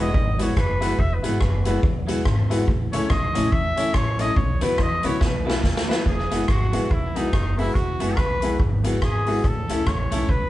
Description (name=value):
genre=ska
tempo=142 BPM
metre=4/4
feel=swing 60% on 8ths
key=E major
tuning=A4 = 440 Hz
part: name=warm trumpet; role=melody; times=0.0-10.5 s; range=D#4 to E5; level=-27 LUFS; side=equal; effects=none
part: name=semi-hollow electric guitar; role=accompaniment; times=0.0-10.3 s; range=F#3 to F#4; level=-31 LUFS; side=right 2 dB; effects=none
part: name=clean electric guitar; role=riff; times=0.0-5.8 s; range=E2 to E3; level=-33 LUFS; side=left 3 dB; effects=none
part: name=warm upright piano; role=stabs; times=0.0-10.3 s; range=A3 to C#5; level=-28 LUFS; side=left 3 dB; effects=tape echo
part: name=upright bass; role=bass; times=0.0-10.5 s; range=E1 to E2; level=-26 LUFS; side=equal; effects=none
part: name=street-band drum kit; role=drums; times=0.1-10.4 s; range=hi-hat, kick drum, rim click, snare drum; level=-23 LUFS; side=equal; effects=none
room=moderate large studio reverb, RT60 1.2 s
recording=band playing live in one room, nothing above 10.6 kHz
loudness=-19 LUFS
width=side -15 dB against mid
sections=0.0-6.1 A section; 6.1-10.5 A section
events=trumpet solo 0.0-6.1, 6.1-10.5; drum fill 5.2-6.1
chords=0.0 Eadd9; 2.7 A; 4.4 Bsus4; 6.1 Eadd9; 9.4 A